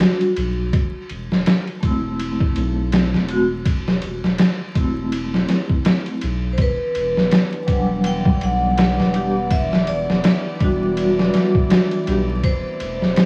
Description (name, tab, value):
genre	trip hop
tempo	82 BPM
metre	4/4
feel	swing 58% on 16ths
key	E minor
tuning	A4 = 436 Hz
part	vibraphone with medium mallets	accompaniment	0.0-12.2 s	F#3 to G4	-24 LUFS	equal	tremolo, tape echo
part	trip hop sampler-style drum kit	drums	0.0-13.3 s	kick drum, ride cymbal, snare drum	-21 LUFS	equal	none
part	round analog bass	bass	0.4-13.2 s	E1 to B1	-28 LUFS	equal	transformer saturation
part	vibraphone with hard mallets	melody	6.5-13.3 s	B4 to G5	-27 LUFS	equal	tape echo
part	warbly tape-like pad	sustained chords	6.8-13.3 s	E3 to E4	-30 LUFS	equal	chorus, built-in reverb
part	bowed-like drone	texture	7.2-13.3 s	D5	-39 LUFS	equal	built-in reverb
room	light reverb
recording	worn, warbling old tape, cassette tape, vinyl crackle, warbly pitch drift, small room ambience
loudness	-19 LUFS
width	mono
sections	0.0-13.3 A section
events	none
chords	0.0 Em9 (rootless); 0.7 Am/E; 6.6 Em9; 12.4 Am/E